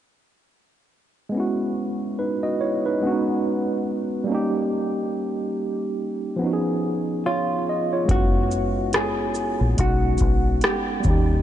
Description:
lo-fi hip hop; 71 BPM; 4/4; swing 57% on 16ths; A4 = 439 Hz
tine electric piano; accompaniment; 1.3-11.4 s; E#3 to F#5; -23 LUFS; right 1 dB; medium stereo tremolo
hollow-body jazz guitar; melody; 7.3-11.4 s; E#4 to G#4; -26 LUFS; left 1 dB; ping-pong delay
deep dub fingered electric bass; bass; 8.1-11.4 s; F#1 to D#2; -24 LUFS; equal
booming analog drum machine; drums; 8.1-11.3 s; hi-hat, kick drum, rim click, shaker; -23 LUFS; equal; overdrive
light reverb, digital ambience; nothing above 10.4 kHz; -21 LUFS; side -11 dB against mid
1.3-8.1 A section; 8.1-11.4 B section
1.3 F#9sus4; 3.0 B6; 4.3 D#7; 6.4 C#7; 8.1 F#9sus4; 9.8 B6

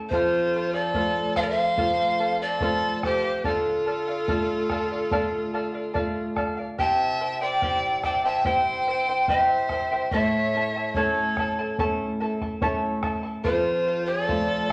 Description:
andean folk, Andean ensemble; 72 BPM; 4/4; straight; D minor; A4 = 435 Hz
charango; accompaniment; 0.0-14.7 s; E4 to A5; -30 LUFS; equal
flamenco guitar; accompaniment; 0.0-14.7 s; F2 to F4; -33 LUFS; equal
breathy reedy pan flute; melody; 0.1-14.7 s; A4 to A5; -28 LUFS; equal
clear violin; second line; 0.1-14.7 s; F4 to E5; -34 LUFS; equal
bombo; percussion; 0.1-14.7 s; -36 LUFS; equal
wet large studio reverb, RT60 1.2 s; -25 LUFS; mono
0.0-14.7 A section
0.1 F; 3.4 Dm; 6.8 C; 10.1 A; 13.5 F

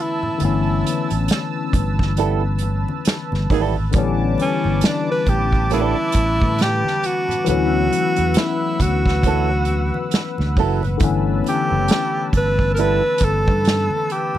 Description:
R&B, neo-soul; 68 BPM; 4/4; swing 59% on 16ths; A4 = 439 Hz
breathy tenor saxophone; melody; 0.0-14.4 s; C#4 to B4; -21 LUFS; right 1 dB; slapback echo
barky tine electric piano; accompaniment; 0.0-14.4 s; D3 to C#4; -24 LUFS; left 8 dB; phaser
warm analog pad; sustained chords; 0.0-14.4 s; B4 to E6; -29 LUFS; equal; chorus, tremolo
congas; percussion; 0.2-14.4 s; -32 LUFS; right 1 dB
fingered electric bass; bass; 0.4-13.9 s; F#1 to A2; -21 LUFS; equal
unplugged drum kit; drums; 0.4-14.3 s; hi-hat, kick drum, snare drum; -20 LUFS; right 1 dB
flamenco guitar; second line; 2.2-13.0 s; F#3 to A4; -21 LUFS; right 11 dB
little or no reverb; dry, close 1970s-style studio recording; -16 LUFS; side -12 dB against mid
0.0-14.4 A section
0.0 G69; 3.9 A9sus4; 7.5 D69; 11.0 G69

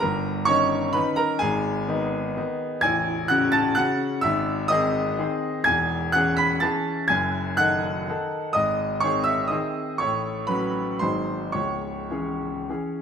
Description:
classical, piano waltz; 104-135 BPM; 3/4; rubato; C# minor; A4 = 440 Hz
clear baby grand piano; solo; 0.0-13.0 s; A0 to B6; -21 LUFS; equal
moderate scoring stage reverb, RT60 1.9 s; -21 LUFS; side -7 dB against mid
0.0-13.0 A section
0.0 D#7/G; 1.4 G#m; 2.8 F#m/A; 4.2 G#; 5.7 C#m/E; 7.1 D#dim/F#; 8.6 G#; 10.0 F#m/A; 11.0 G#7; 11.6 C#m

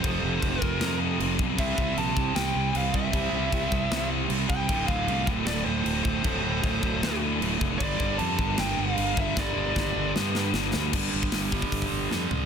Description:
heavy metal; 154 BPM; 4/4; straight; A4 = 444 Hz
high-gain lead guitar; melody; 0.0-10.1 s; C5 to A5; -32 LUFS; equal; distortion, digital delay
clear studio string section; sustained chords; 0.0-10.9 s; E3 to Bb4; -42 LUFS; left 2 dB
distorted electric guitar; riff; 0.0-12.5 s; D2 to C4; -30 LUFS; right 13 dB; distortion
high-gain distorted guitar; riff; 0.0-12.5 s; D2 to G3; -31 LUFS; left 16 dB; distortion
fuzz fingered electric bass; bass; 0.0-12.5 s; D1 to G2; -31 LUFS; left 1 dB; overdrive
tight metal drum kit; drums; 0.0-12.4 s; crash cymbal, hi-hat, kick drum, snare drum, toms; -30 LUFS; equal
light reverb; dense, heavily limited modern master; -24 LUFS; side -7 dB against mid
0.0-10.9 A section; 10.9-12.5 B section
half time 0.0-10.9; drum fill 9.4-10.9, 12.1-12.5
0.0 F; 1.6 C; 4.7 Dm; 7.8 Gm; 10.9 G5

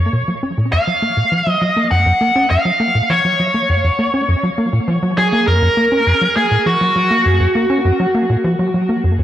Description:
ambient; 101 BPM; 4/4; straight; F# major; A4 = 440 Hz
tight sequencer bass; riff; 0.0-9.2 s; F#2 to C#4; -16 LUFS; equal; cassette tape, tape echo
nasal lead guitar with a parked wah; melody; 0.7-9.2 s; F#4 to F#5; -16 LUFS; equal; overdrive, tape echo
moderate spring reverb, RT60 2.3 s; home recording on cassette; -13 LUFS; side -11 dB against mid
0.0-9.2 A section
0.0 F#

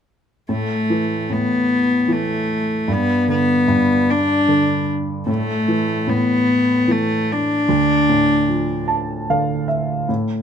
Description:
acoustic folk-pop ballad; 75 BPM; 3/4; straight; A4 = 440 Hz
rich cello; melody; 0.5-8.9 s; A3 to D4; -17 LUFS; left 1 dB
dark grand piano; accompaniment; 0.5-10.4 s; D2 to A5; -20 LUFS; right 2 dB
little or no reverb; close, detailed microphones; -16 LUFS; side -8 dB against mid
0.5-10.4 A section
0.5 A5; 2.9 G; 5.3 A5; 7.7 Dm

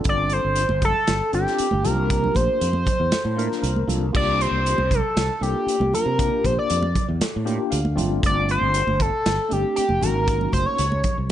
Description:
electric jazz fusion; 118 BPM; 4/4; straight; A4 = 440 Hz
tine electric piano; accompaniment; 0.0-10.8 s; A3 to G5; -28 LUFS; left 2 dB; medium stereo tremolo, phaser
fretless electric bass; bass; 0.0-11.3 s; F1 to C3; -24 LUFS; equal; analog chorus
modern studio drum kit; drums; 0.0-11.2 s; crash cymbal, hi-hat, kick drum, snare drum; -26 LUFS; equal
sync lead; melody; 0.1-11.2 s; G4 to D5; -22 LUFS; equal; chorus
congas; percussion; 0.7-11.3 s; -30 LUFS; right 4 dB
studio reverb; nothing above 10.3 kHz; -19 LUFS; side -11 dB against mid
0.0-4.1 A section; 4.1-11.3 A section
tine electric piano fill 3.4-4.1, 7.2-8.2
0.0 G9sus4; 1.9 C9sus4; 8.0 G9sus4; 10.0 Ab9sus4

